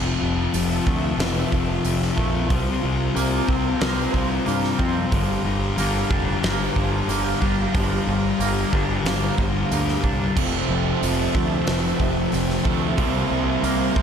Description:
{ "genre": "rock, shoegaze and dream pop", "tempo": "92 BPM", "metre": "4/4", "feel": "straight", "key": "C mixolydian", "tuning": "A4 = 439 Hz", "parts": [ { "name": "string machine, violins", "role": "sustained chords", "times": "0.0-14.0 s", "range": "F4 to Bb5", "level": "-31 LUFS", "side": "right 4 dB", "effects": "ensemble chorus" }, { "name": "twangy electric guitar", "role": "arpeggios", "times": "0.0-14.0 s", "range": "F3 to D4", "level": "-30 LUFS", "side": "right 7 dB", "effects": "analog chorus, tape echo" }, { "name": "thick fuzz guitar", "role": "riff", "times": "0.0-14.0 s", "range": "F2 to C4", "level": "-24 LUFS", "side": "left 6 dB", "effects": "distortion, wide subtle chorus" }, { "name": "growling fingered electric bass", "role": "bass", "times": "0.0-14.0 s", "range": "F1 to G2", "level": "-26 LUFS", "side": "right 1 dB", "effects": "overdrive" }, { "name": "huge arena drum kit", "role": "drums", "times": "0.5-14.0 s", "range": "crash cymbal, hi-hat, kick drum, snare drum", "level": "-26 LUFS", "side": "right 1 dB", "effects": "none" }, { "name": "tambourine", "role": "percussion", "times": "0.5-13.8 s", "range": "none", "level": "-35 LUFS", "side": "right 20 dB", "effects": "none" }, { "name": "biting overdriven guitar", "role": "riff", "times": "10.4-14.0 s", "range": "F2 to E4", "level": "-25 LUFS", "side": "right 13 dB", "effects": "reverse reverb" } ], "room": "light reverb", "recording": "none", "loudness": "-19 LUFS", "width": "side -8 dB against mid", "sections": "0.0-14.0 A section", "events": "none", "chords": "0.0 Fmaj7; 2.5 C7sus4; 5.1 Gm7; 10.4 Fmaj7; 13.0 C7sus4" }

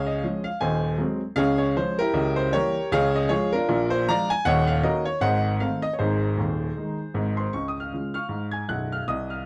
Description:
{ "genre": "jazz, stride piano", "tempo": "156 BPM", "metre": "4/4", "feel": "swing 59% on 8ths", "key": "Db major", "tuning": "A4 = 441 Hz", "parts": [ { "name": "clear baby grand piano", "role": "solo", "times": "0.0-9.5 s", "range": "Cb1 to Ab6", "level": "-25 LUFS", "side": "equal", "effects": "none" } ], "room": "light reverb", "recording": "dry, close 1970s-style studio recording", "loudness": "-25 LUFS", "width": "mono", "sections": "0.0-7.5 A section; 7.5-9.5 B section", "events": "none", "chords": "0.0 Db; 0.6 Ab7/Eb; 1.4 Db; 2.1 Dbdim7; 2.9 Db; 3.7 Bb7; 4.4 Ebm7; 5.2 Ab7b9; 6.0 Ab; 7.5 Db" }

